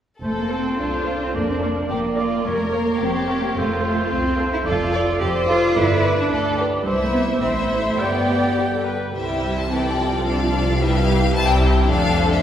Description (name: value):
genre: quick classical-period movement for symphony orchestra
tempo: 109 BPM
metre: 2/4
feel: rubato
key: F major, C major from 4.7 s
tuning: A4 = 436 Hz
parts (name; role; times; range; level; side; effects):
- mellow cor anglais; second line; 0.2-8.9 s; C5 to G5; -27 LUFS; right 2 dB; none
- rich chamber violin section; second line; 0.2-12.4 s; D4 to D5; -26 LUFS; left 2 dB; none
- warm clarinet; second line; 0.2-8.9 s; A4 to D5; -28 LUFS; equal; none
- rich chamber cello section; bass; 0.2-12.4 s; F2 to G4; -23 LUFS; right 1 dB; none
- rich chamber double bass section; bass; 0.2-12.4 s; F1 to D2; -24 LUFS; equal; none
- clear chamber violin section; melody; 0.5-12.4 s; D5 to A5; -27 LUFS; left 3 dB; none
- warm chamber viola section; accompaniment; 0.5-12.4 s; D3 to D5; -26 LUFS; equal; none
room: wet concert hall reverb, RT60 2.4 s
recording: recorded in a church or concert hall, lossy compression artefacts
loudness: -18 LUFS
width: side -10 dB against mid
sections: 0.2-9.2 A section; 9.2-12.4 B section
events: none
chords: 0.2 F; 1.4 Bb/F; 2.5 Bbm/F; 3.6 F; 4.7 Dm/F; 5.8 G; 6.9 C; 7.4 Am; 8.0 G; 9.2 C; 10.3 G7/C; 11.4 C; 11.9 Dm/F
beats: | 0.22 0.79 | 1.35 1.91 | 2.46 3.01 | 3.56 4.12 | 4.67 5.21 | 5.76 6.31 | 6.86 7.42 | 8.00 8.59 | 9.16 9.71 | 10.27 10.81 | 11.35 11.91